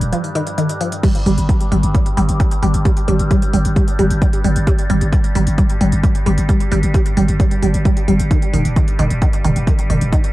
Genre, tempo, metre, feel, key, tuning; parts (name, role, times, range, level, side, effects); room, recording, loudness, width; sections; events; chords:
driving peak-time techno; 132 BPM; 4/4; straight; A4 = 440 Hz
growling 808-style bass; bass; 0.0-10.1 s; Eb1 to G1; -16 LUFS; equal; overdrive, sidechain pumping, low-pass filter
overtone-sweeping drone; drone; 0.0-10.3 s; G2 to G3; -26 LUFS; equal; chorus, built-in reverb, sidechain pumping, cassette tape
techno drum kit; drums; 0.0-10.3 s; crash cymbal, hi-hat; -32 LUFS; left 1 dB; cassette tape
resonant blip pluck; riff; 0.1-10.2 s; Eb3 to G3; -20 LUFS; right 1 dB; phaser, overdrive, sidechain pumping, cassette tape, tape echo
electronic kick drum; drums; 1.0-10.2 s; -16 LUFS; equal; cassette tape
little or no reverb; home recording on cassette; -13 LUFS; side -17 dB against mid
0.0-10.3 A section
break 0.1-1.0
0.0 Ebadd9; 1.0 N.C.; 8.3 Eb